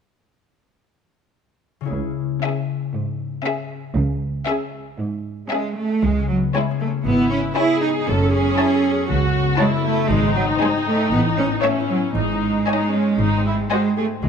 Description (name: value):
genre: cinematic, playful, whimsical film cue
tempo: 117 BPM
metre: 4/4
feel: straight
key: C# minor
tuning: A4 = 440 Hz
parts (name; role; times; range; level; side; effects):
- concert harp; arpeggios; 1.8-14.3 s; F#2 to A4; -25 LUFS; left 9 dB; none
- clear studio cello section; bass; 1.9-14.3 s; G#2 to E4; -21 LUFS; right 3 dB; none
- rich studio double bass section; bass; 1.9-14.3 s; F#1 to C#2; -24 LUFS; right 3 dB; none
- clear studio violin section; melody; 2.4-14.1 s; E5 to A5; -29 LUFS; left 3 dB; none
- rich studio violin section; second line; 2.4-14.1 s; D#4 to D#5; -26 LUFS; left 4 dB; none
- rich studio viola section; accompaniment; 2.4-14.1 s; C#4 to A4; -24 LUFS; left 1 dB; none
room: light reverb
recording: none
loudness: -18 LUFS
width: side -7 dB against mid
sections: 1.9-6.0 A section; 6.0-14.3 B section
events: none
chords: 1.9 C#m; 8.1 F#m7; 10.1 G#; 11.1 A; 12.2 G#sus4; 13.2 G#